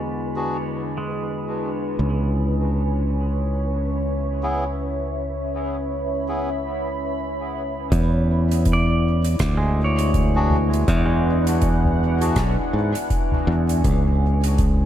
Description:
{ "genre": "ambient dub", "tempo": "81 BPM", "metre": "4/4", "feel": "swing 59% on 16ths", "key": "E mixolydian", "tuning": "A4 = 440 Hz", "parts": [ { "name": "deep dark ambient pad", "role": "sustained chords", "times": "0.0-14.9 s", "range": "C#4 to B5", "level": "-26 LUFS", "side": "left 1 dB", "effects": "chorus, built-in reverb" }, { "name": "pedal steel guitar", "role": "arpeggios", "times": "0.0-2.2, 8.7-12.8 s", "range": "G#3 to D5", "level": "-30 LUFS", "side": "right 2 dB", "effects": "low-pass filter, dub echo" }, { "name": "modern bright fingered electric bass", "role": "bass", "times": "0.0-14.9 s", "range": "B1 to G#2", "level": "-21 LUFS", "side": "equal", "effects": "none" }, { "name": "wind-like tuned noise texture", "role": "texture", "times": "0.0-7.9 s", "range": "B4", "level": "-36 LUFS", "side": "right 1 dB", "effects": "built-in reverb" }, { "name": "melodica", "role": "stabs", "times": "0.4-12.4 s", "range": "B3 to G#4", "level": "-31 LUFS", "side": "left 1 dB", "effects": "dub echo" }, { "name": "electronic kick drum", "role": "drums", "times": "7.9-14.8 s", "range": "none", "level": "-23 LUFS", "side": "equal", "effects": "none" }, { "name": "soft-mallet drum kit", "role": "drums", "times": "7.9-14.8 s", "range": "hi-hat, rim click, toms", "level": "-30 LUFS", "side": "equal", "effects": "dub echo" } ], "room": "light reverb, studio reverb", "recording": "none", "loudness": "-19 LUFS", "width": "side -11 dB against mid", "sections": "0.0-7.9 A section; 7.9-14.9 B section", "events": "filter sweep on pedal steel guitar 0.0-7.9", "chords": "0.0 E7; 2.0 C#m7; 7.9 E7; 13.8 C#m7", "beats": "0.51 1.25 | 1.99 2.73 3.47 4.21 | 4.96 5.70 6.44 7.18 | 7.92 8.66 9.40 10.14 | 10.88 11.62 12.36 13.10 | 13.84 14.59" }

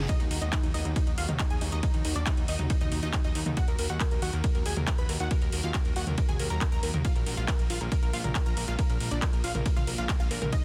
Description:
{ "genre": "uplifting trance", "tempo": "138 BPM", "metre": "4/4", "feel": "straight", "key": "Eb harmonic minor", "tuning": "A4 = 440 Hz", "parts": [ { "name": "unison pluck", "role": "melody", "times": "0.0-10.6 s", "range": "D4 to Cb6", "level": "-39 LUFS", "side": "equal", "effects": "sidechain pumping, dub echo" }, { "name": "plucky unison lead", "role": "second line", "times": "0.0-10.6 s", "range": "Eb4 to Cb6", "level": "-43 LUFS", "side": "equal", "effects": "phaser, ensemble chorus, sidechain pumping, dub echo" }, { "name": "fat analog bass", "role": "bass", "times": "0.0-10.5 s", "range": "Bb1 to Eb2", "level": "-34 LUFS", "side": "equal", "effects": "tube saturation, sidechain pumping" }, { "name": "electronic kick drum", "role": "drums", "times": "0.1-10.6 s", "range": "none", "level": "-30 LUFS", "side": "equal", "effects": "none" }, { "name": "techno drum kit", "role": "drums", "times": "0.1-10.6 s", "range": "handclaps, hi-hat, ride cymbal, toms", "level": "-36 LUFS", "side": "equal", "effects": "sidechain pumping on hats, sidechain pumping on cymbals, sidechain pumping on toms" } ], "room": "digital ambience", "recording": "dense, heavily limited modern master", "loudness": "-28 LUFS", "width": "mono", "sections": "0.0-10.6 A section", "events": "none", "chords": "0.1 Ebm; 7.0 Bb7", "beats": "| 0.09 0.53 0.96 1.40 | 1.83 2.27 2.70 3.13 | 3.57 4.00 4.44 4.87 | 5.31 5.74 6.18 6.61 | 7.05 7.48 7.92 8.35 | 8.79 9.22 9.66 10.09 | 10.53" }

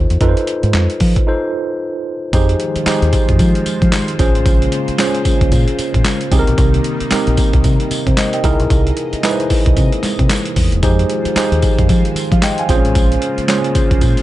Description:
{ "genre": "R&B, new jack swing", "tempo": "113 BPM", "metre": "4/4", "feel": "swing 60% on 16ths", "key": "Bb dorian", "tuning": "A4 = 440 Hz", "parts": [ { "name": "mellow tine electric piano", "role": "accompaniment", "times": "0.0-14.2 s", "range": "C4 to Ab5", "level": "-18 LUFS", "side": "right 1 dB", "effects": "slow stereo tremolo" }, { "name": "deep dub fingered electric bass", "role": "bass", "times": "0.0-14.1 s", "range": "E1 to F3", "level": "-16 LUFS", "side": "equal", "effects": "none" }, { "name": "boom bap sampler-style drum kit", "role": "drums", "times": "0.1-14.2 s", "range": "handclaps, hi-hat, kick drum, snare drum, tambourine", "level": "-16 LUFS", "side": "equal", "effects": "overdrive" }, { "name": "phased analog pad", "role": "sustained chords", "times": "2.3-14.2 s", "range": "C3 to D#5", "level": "-23 LUFS", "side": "equal", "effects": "phaser, chorus" } ], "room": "little or no reverb", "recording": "dark, warm production, nothing above 10.9 kHz", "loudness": "-12 LUFS", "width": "side -15 dB against mid", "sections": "0.0-2.3 A section; 2.3-14.2 B section", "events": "break 1.3-2.3", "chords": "0.0 F7; 2.3 Fm7; 4.2 Bbm9; 6.3 Cm7; 8.4 C7alt; 10.8 Fm7; 12.7 Bbm9", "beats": "| 0.21 0.74 1.27 1.80 | 2.33 2.86 3.40 3.93 | 4.46 4.99 5.52 6.05 | 6.58 7.11 7.64 8.17 | 8.71 9.24 9.77 10.30 | 10.83 11.36 11.89 12.42 | 12.95 13.48 14.01" }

